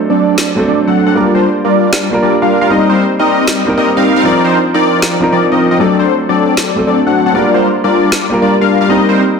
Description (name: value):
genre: future bass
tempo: 155 BPM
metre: 4/4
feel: swing 55% on 16ths, half-time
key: G minor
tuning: A4 = 440 Hz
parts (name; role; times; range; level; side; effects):
- dark concert grand piano; accompaniment; 0.0-9.4 s; F3 to Bb4; -15 LUFS; right 1 dB; dub echo
- big bright polysynth; riff; 0.1-9.2 s; F3 to F#5; -10 LUFS; left 1 dB; wide subtle chorus, dub echo
- electronic snare drum; drums; 0.4-8.2 s; none; -16 LUFS; equal; none
room: moderate digital room reverb, RT60 1.3 s, small room reverb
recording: dense, heavily limited modern master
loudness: -9 LUFS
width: side -5 dB against mid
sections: 0.0-9.4 A section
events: filter sweep on analog polysynth 0.0-9.4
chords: 0.0 D7; 1.2 Gm7; 2.7 Eb6; 4.2 Cm11; 5.8 D7; 7.3 Gm7; 8.9 Eb6